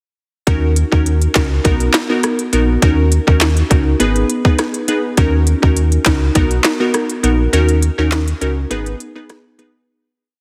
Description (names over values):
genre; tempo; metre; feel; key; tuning
dancehall; 102 BPM; 4/4; straight; Eb minor; A4 = 440 Hz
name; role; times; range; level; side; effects
glassy wavetable pluck; accompaniment; 0.5-9.9 s; B3 to Cb5; -20 LUFS; equal; chorus
sub bass with octave; bass; 0.5-8.9 s; Ab1 to Eb2; -17 LUFS; equal; none
island pop drum kit; drums; 0.5-9.7 s; handclaps, hi-hat, kick drum, rim click, snare drum; -18 LUFS; equal; overdrive
room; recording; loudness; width
light reverb; heavily compressed radio sound; -15 LUFS; mono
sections
0.5-9.9 verse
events
break 7.5-9.9; fade-out 7.5-9.9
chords
0.5 Ebm7; 1.6 Bmaj7; 2.8 Ebm7; 4.0 Abm; 5.2 Ebm7; 6.4 Bmaj7; 7.5 Ebm7; 8.7 Abm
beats
| 0.47 1.06 1.65 2.24 | 2.83 3.41 4.00 4.59 | 5.18 5.77 6.35 6.94 | 7.53 8.12 8.71 9.29